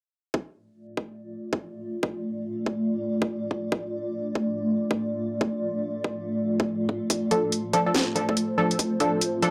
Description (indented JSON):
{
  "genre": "deep dubstep",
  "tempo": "142 BPM",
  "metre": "4/4",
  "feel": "swing 62% on 16ths, half-time",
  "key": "D minor",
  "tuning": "A4 = 440 Hz",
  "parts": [
    { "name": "granular cloud pad", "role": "sustained chords", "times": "1.3-9.5 s", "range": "A3 to D5", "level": "-30 LUFS", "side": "equal", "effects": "built-in reverb" },
    { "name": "electronic kick drum", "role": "drums", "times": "0.3-9.5 s", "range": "none", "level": "-30 LUFS", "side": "equal", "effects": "high-pass filter on kick, small room ambience" },
    { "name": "garage drum kit", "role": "drums", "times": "7.1-9.5 s", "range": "hi-hat, snare drum", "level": "-28 LUFS", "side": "equal", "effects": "small room ambience" },
    { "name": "filtered dub chord stab", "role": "stabs", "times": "7.3-9.5 s", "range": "F3 to A4", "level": "-26 LUFS", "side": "equal", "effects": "chorus, dub echo" }
  ],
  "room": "light reverb",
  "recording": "dry, gritty hardware recording",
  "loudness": "-27 LUFS",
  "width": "mono",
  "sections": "0.3-9.5 A section",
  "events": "filter sweep on ambient pad 0.3-9.5",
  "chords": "0.3 Dm"
}